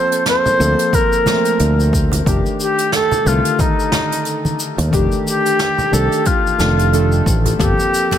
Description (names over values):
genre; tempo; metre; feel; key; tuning
sunset chillout; 90 BPM; 4/4; swing 57% on 16ths; unclear; A4 = 440 Hz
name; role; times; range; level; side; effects
bright reedy baroque flute; melody; 0.0-8.2 s; Eb4 to C5; -17 LUFS; left 1 dB; ping-pong delay
soft electric-piano-like synth keys; accompaniment; 0.0-8.2 s; D3 to A4; -20 LUFS; moving between left 4 dB and right 4 dB; chorus, auto-pan, digital delay
soft brush drum kit; drums; 0.1-8.2 s; hi-hat, shaker, snare drum, toms; -23 LUFS; equal; none
congas; percussion; 0.5-8.2 s; none; -25 LUFS; right 1 dB; none
fingered electric bass; bass; 0.6-7.7 s; F1 to Eb2; -16 LUFS; equal; tube saturation
electronic kick drum; drums; 0.9-7.7 s; none; -19 LUFS; equal; overdrive
room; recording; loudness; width
light reverb, small room ambience; none; -13 LUFS; side -10 dB against mid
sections
0.0-8.2 A section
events
none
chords
0.0 Gm11 (rootless); 2.3 F13; 7.6 Gm11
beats
0.26 0.93 1.59 | 2.26 2.93 3.60 4.26 | 4.93 5.59 6.26 6.93 | 7.59